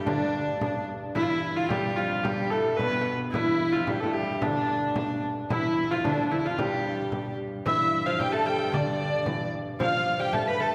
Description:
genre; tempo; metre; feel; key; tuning
medieval dance; 111 BPM; 2/4; straight; G mixolydian; A4 = 440 Hz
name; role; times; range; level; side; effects
warm hurdy-gurdy; melody; 0.0-10.7 s; D4 to B5; -30 LUFS; equal; none
lute; second line; 0.0-10.7 s; D2 to A3; -35 LUFS; equal; none
rich fiddle; second line; 0.0-10.7 s; G3 to B4; -35 LUFS; equal; none
pedal harmonium; drone; 0.0-10.7 s; G2; -39 LUFS; equal; none
frame drum; percussion; 0.1-10.6 s; none; -37 LUFS; equal; none
room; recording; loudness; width
wet concert hall reverb, RT60 2.6 s; recorded in a church or concert hall; -27 LUFS; mono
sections
0.0-7.7 A section; 7.7-10.7 A section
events
none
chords
none

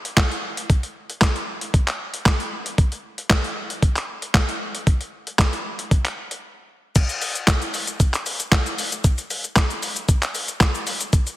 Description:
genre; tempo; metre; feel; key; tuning
pop; 115 BPM; 4/4; straight; none; none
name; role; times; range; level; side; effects
dusty soul sampler-style drum kit; drums; 0.1-11.4 s; crash cymbal, handclaps, hi-hat, kick drum, shaker, snare drum; -19 LUFS; equal; overdrive, soft clipping on snare
room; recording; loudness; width
light reverb; dense, heavily limited modern master; -19 LUFS; side -16 dB against mid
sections
0.0-7.0 A section; 7.0-11.4 B section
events
break 6.4-7.0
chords
none

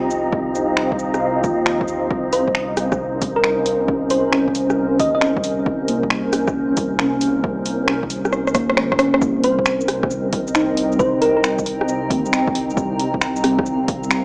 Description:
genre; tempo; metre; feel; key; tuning
future garage; 135 BPM; 4/4; swing 67% on 16ths; C phrygian; A4 = 440 Hz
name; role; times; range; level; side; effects
muted felt-like synth keys; accompaniment; 0.0-14.2 s; Bb3 to G4; -25 LUFS; equal; chorus, sidechain pumping, tape echo
granular cloud pad; sustained chords; 0.0-14.2 s; C4 to Bb5; -26 LUFS; equal; built-in reverb, sidechain pumping
dark detuned saw bass; bass; 0.0-14.2 s; G1 to Eb2; -29 LUFS; equal; tube saturation
wind-like tuned noise texture; texture; 0.0-9.2 s; Eb4 to Eb5; -34 LUFS; equal; built-in reverb
deep house drum kit; drums; 0.1-14.2 s; finger snaps, hi-hat, rim click, shaker; -24 LUFS; equal; overdrive, small room ambience
electronic kick drum; drums; 0.3-14.0 s; none; -28 LUFS; equal; overdrive, small room ambience
thumb-piano-like synth pluck; melody; 2.3-5.2, 9.4-11.4 s; Bb4 to Eb5; -24 LUFS; equal; chorus, analog delay
room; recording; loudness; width
moderate lush hall reverb, RT60 2.3 s; small speaker sound; -19 LUFS; mono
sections
0.0-9.2 A section; 9.2-14.2 B section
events
drum fill 8.3-9.2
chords
0.0 Cm7; 2.1 Bbmadd9/C; 9.2 Cm7

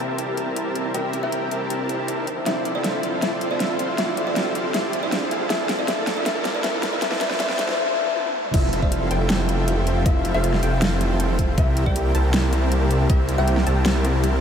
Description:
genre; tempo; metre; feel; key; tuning
future bass; 158 BPM; 4/4; half-time; F major; A4 = 440 Hz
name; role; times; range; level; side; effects
warm chamber string section; sustained chords; 0.0-14.4 s; C3 to E5; -33 LUFS; left 2 dB; none
soft round pluck; arpeggios; 0.0-14.4 s; D4 to G5; -32 LUFS; right 1 dB; none
dense compressed supersaw; riff; 0.0-14.4 s; C4 to A5; -26 LUFS; right 1 dB; sidechain pumping, low-pass filter, tape echo
riser; sound effects; 0.0-7.8 s; none; -32 LUFS; right 1 dB; none
dubstep drum kit; drums; 0.2-14.3 s; crash cymbal, hi-hat, snare drum, toms; -27 LUFS; equal; overdrive, small room ambience
kalimba; melody; 0.9-13.5 s; D5 to G5; -29 LUFS; left 2 dB; sidechain pumping, ping-pong delay
wide unison pluck; arpeggios; 8.5-14.4 s; E5 to A5; -34 LUFS; equal; none
wide detuned saw bass; bass; 8.5-14.4 s; F1 to C2; -21 LUFS; equal; chorus, sidechain pumping
electronic kick drum; drums; 8.5-13.2 s; none; -20 LUFS; equal; overdrive, small room ambience
room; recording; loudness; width
wet huge ambient reverb, RT60 7.6 s; dreamy mix soaked in reverb, high-pass filter; -19 LUFS; side -8 dB against mid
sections
0.0-8.5 A section; 8.5-14.4 B section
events
build-up 0.0-8.5; riser 0.0-7.8; drum fill 2.5-7.8, 8.2-8.5; drop 8.5-14.4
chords
0.0 C7; 2.3 Dm9; 5.5 Bbmaj7; 8.5 Fmaj7; 11.6 C7

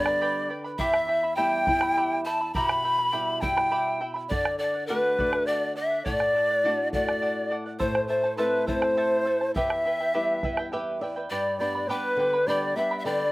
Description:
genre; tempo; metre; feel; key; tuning
andean folk, Andean ensemble; 68 BPM (dotted quarters); 6/8; straight; E minor; A4 = 440 Hz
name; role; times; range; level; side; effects
breathy large quena; melody; 0.0-13.3 s; B4 to B5; -26 LUFS; equal; none
breathy bright pan flute; second line; 0.0-13.3 s; B4 to B5; -28 LUFS; left 2 dB; slapback echo
charango; accompaniment; 0.0-13.3 s; E4 to B5; -32 LUFS; right 2 dB; slapback echo
flamenco guitar; accompaniment; 0.0-13.3 s; E2 to D5; -34 LUFS; left 2 dB; none
bombo; percussion; 0.1-10.8 s; none; -32 LUFS; right 1 dB; none
room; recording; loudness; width
little or no reverb; recorded outdoors, with no room sound; -23 LUFS; side -20 dB against mid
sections
0.0-11.3 A section; 11.3-13.3 A section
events
nylon-string guitar fill 10.4-11.3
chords
0.0 G; 0.8 Em; 4.3 D; 7.8 Am; 9.6 Em; 11.3 G

